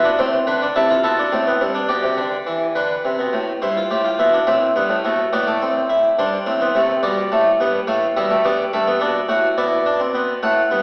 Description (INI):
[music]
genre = classical, baroque-style 3-part fugue for harpsichord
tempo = 70 BPM (dotted quarters)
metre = 12/8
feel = straight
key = A minor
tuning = A4 = 440 Hz
[part]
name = harpsichord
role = solo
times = 0.0-10.8 s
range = G2 to F#5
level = -18 LUFS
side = equal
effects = none
[sound]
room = wet recital hall reverb, RT60 1.5 s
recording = recorded in a church or concert hall, AM radio sound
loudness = -19 LUFS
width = mono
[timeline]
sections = 0.0-1.9 A section; 1.9-10.8 B section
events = none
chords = 0.2 Am; 1.9 G/B; 3.6 Cmaj7/G; 5.3 Am11; 7.0 Bm7b5; 8.7 G